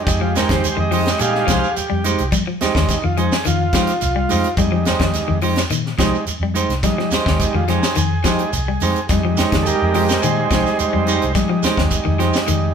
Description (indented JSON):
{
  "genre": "afrobeat",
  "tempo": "106 BPM",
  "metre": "4/4",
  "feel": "straight",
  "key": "F minor",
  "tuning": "A4 = 441 Hz",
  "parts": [
    { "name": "overdriven combo organ", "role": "accompaniment", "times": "0.0-12.7 s", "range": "G3 to F5", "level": "-21 LUFS", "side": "right 3 dB", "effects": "none" },
    { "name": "electric guitar at the edge of break-up", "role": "arpeggios", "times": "0.1-12.7 s", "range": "Eb3 to G3", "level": "-23 LUFS", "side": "left 10 dB", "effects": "none" },
    { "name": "vintage muted fingered electric bass", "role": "bass", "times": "0.1-12.7 s", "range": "C2 to F3", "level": "-22 LUFS", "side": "equal", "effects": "none" },
    { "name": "tight funk drum kit", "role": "drums", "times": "0.1-12.6 s", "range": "hi-hat, kick drum, snare drum", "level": "-22 LUFS", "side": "equal", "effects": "none" },
    { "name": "shekere", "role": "percussion", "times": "0.1-12.6 s", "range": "none", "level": "-27 LUFS", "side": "right 4 dB", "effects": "none" },
    { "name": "clean electric guitar", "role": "stabs", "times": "0.4-12.4 s", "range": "Ab3 to C5", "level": "-23 LUFS", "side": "right 5 dB", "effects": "none" }
  ],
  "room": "wet studio reverb, RT60 0.8 s",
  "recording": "band playing live in one room",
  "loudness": "-15 LUFS",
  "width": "side -7 dB against mid",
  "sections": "0.0-12.7 A section",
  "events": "transistor combo organ solo 0.0-12.7",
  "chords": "0.0 Fm9"
}